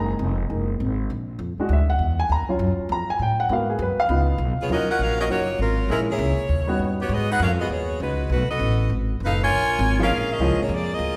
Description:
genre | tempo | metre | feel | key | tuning
jazz, big band swing | 200 BPM | 4/4 | swing 63% on 8ths | F# major, Eb minor from 4.7 s | A4 = 440 Hz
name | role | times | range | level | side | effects
warm baby grand piano | accompaniment | 0.0-7.1, 10.0-10.6 s | F3 to A#5 | -27 LUFS | equal | none
upright bass | bass | 0.0-11.2 s | E#1 to A2 | -26 LUFS | equal | none
warm saxophone section | melody | 4.6-11.2 s | Gb3 to Ab5 | -26 LUFS | equal | none
room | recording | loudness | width
wet recital hall reverb, RT60 1.6 s | recorded in a church or concert hall | -23 LUFS | mono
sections
0.0-4.7 A section; 4.7-11.2 B section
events
grand piano solo 0.0-4.7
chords
0.0 F#69; 1.1 A#7b13; 2.3 D#m9; 3.5 G#m7; 4.1 C#7; 4.7 Ebm9; 5.9 Bbm7b5; 6.5 Eb7alt; 7.1 Abm7; 8.3 B7; 9.5 Bbm7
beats
0.20 0.50 0.80 | 1.10 1.40 1.70 2.00 | 2.30 2.60 2.90 3.20 | 3.50 3.80 4.10 4.40 | 4.70 5.00 5.30 5.60 | 5.90 6.20 6.50 6.80 | 7.10 7.40 7.70 8.00 | 8.30 8.60 8.90 9.20 | 9.50 9.80 10.10 10.40 | 10.71 11.01

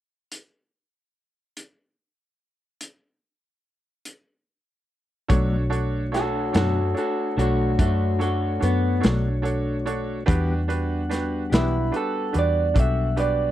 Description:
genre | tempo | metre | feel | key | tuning
slow blues | 48 BPM (dotted quarters) | 12/8 | straight | B minor | A4 = 440 Hz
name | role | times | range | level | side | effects
crunchy breakbeat drum kit | drums | 0.3-13.4 s | hi-hat, kick drum, snare drum | -22 LUFS | equal | none
bright upright piano | accompaniment | 5.3-13.5 s | D4 to E5 | -30 LUFS | right 4 dB | none
mellow electric guitar | accompaniment | 5.3-11.8 s | B2 to G4 | -27 LUFS | left 3 dB | tremolo
mellow tonewheel organ | sustained chords | 5.3-13.5 s | G3 to F#5 | -31 LUFS | left 2 dB | slow rotary speaker
vintage muted fingered electric bass | bass | 5.3-13.5 s | B1 to F#2 | -24 LUFS | equal | none
electric guitar through a small old amp | melody | 6.1-13.5 s | A3 to E5 | -24 LUFS | equal | none
room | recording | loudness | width
little or no reverb | dry, close 1970s-style studio recording | -20 LUFS | side -13 dB against mid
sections
0.3-5.3 A section; 5.3-13.5 B section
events
none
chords
0.3 N.C.; 5.3 Bm7; 10.3 Em7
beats
| 0.31 1.56 2.81 4.06 | 5.30 6.55 7.79 9.04 | 10.28 11.52 12.76

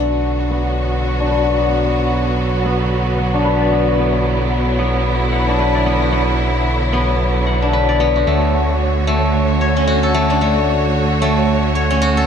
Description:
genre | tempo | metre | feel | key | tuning
organic downtempo | 112 BPM | 4/4 | swing 58% on 16ths | B minor | A4 = 438 Hz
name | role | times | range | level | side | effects
clear studio string section | sustained chords | 0.0-12.3 s | D3 to C#5 | -20 LUFS | right 2 dB | none
steel-string zither | arpeggios | 0.0-12.3 s | A3 to F#5 | -18 LUFS | left 2 dB | low-pass filter, ping-pong delay
smooth synth bass | bass | 0.0-12.3 s | B1 to D2 | -19 LUFS | equal | tube saturation
wind-like tuned noise texture | texture | 0.7-12.3 s | C#5 | -27 LUFS | equal | built-in reverb
cabasa | drums | 0.1-12.3 s | none | barely audible | none | none
room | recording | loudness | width
moderate lush hall reverb, RT60 1.9 s | none | -14 LUFS | side -7 dB against mid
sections
0.0-12.3 A section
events
filter sweep on guzheng 0.0-12.3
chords
0.0 Bm; 8.3 Dmaj7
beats
0.24 0.77 1.31 | 1.84 2.38 2.92 3.45 | 3.99 4.52 5.06 5.59 | 6.13 6.67 7.20 7.74 | 8.27 8.81 9.35 9.88 | 10.42 10.95 11.49 12.02

